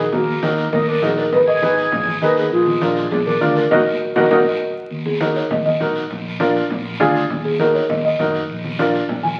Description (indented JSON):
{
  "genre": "latin, cumbia",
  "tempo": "201 BPM",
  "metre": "4/4",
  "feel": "straight",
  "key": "Eb harmonic minor",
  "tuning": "A4 = 441 Hz",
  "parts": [
    { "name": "buzzing marimba with soft mallets", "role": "melody", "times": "0.0-9.4 s", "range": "F4 to Ab5", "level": "-21 LUFS", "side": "equal", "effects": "none" },
    { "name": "accordion", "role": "second line", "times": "0.0-4.4 s", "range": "Ab3 to Ab4", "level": "-26 LUFS", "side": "equal", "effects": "none" },
    { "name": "clear upright piano", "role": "accompaniment", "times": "0.0-9.0 s", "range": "D4 to Cb5", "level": "-22 LUFS", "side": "equal", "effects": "none" },
    { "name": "fingered electric bass", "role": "bass", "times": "0.0-9.3 s", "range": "Ab1 to Gb2", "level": "-30 LUFS", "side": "equal", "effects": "none" },
    { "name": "congas", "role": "percussion", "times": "0.1-9.4 s", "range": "none", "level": "-28 LUFS", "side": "equal", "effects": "none" },
    { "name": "guiro", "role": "percussion", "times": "0.1-9.4 s", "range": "none", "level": "-34 LUFS", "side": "equal", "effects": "none" }
  ],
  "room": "wet large studio reverb, RT60 1.2 s",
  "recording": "very old 78 rpm record, vinyl crackle",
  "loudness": "-18 LUFS",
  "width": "mono",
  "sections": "0.0-4.9 A section; 4.9-9.4 B section",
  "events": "drum fill 3.7-4.9; band accent 3.7-4.9; marimba solo 4.9-9.4",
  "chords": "0.0 Ebm; 1.3 Abm; 2.5 Bb7; 3.7 Ebm; 6.1 Bb7; 7.3 Ebm; 8.5 Bb"
}